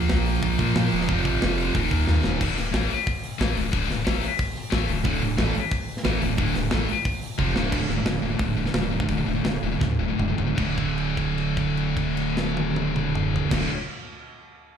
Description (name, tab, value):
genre	heavy metal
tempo	152-182 BPM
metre	4/4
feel	straight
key	D phrygian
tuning	A4 = 439 Hz
part	scooped high-gain guitar	riff	0.0-13.7 s	D2 to Bb3	-28 LUFS	left 12 dB	distortion, slapback echo
part	sludgy distorted guitar	riff	0.0-2.4, 5.0-13.7 s	D2 to Bb3	-26 LUFS	right 6 dB	overdrive
part	warm sub bass	bass	0.0-13.7 s	D1 to Bb2	-28 LUFS	equal	none
part	tight metal drum kit	drums	0.1-13.6 s	crash cymbal, hi-hat, kick drum, snare drum, toms	-28 LUFS	left 1 dB	none
room	studio ambience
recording	live gig heard through the venue's PA, club reverb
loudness	-22 LUFS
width	side -8 dB against mid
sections	0.0-2.4 A section; 2.4-7.7 B section; 7.7-10.6 C section; 10.6-13.7 D section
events	drum fill 2.1-2.4, 7.4-7.7, 9.8-10.6; slowing down 7.7-10.6; held note 10.6-13.5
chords	0.0 Bb5; 1.1 F; 1.7 Eb5; 2.4 Dm; 7.7 D5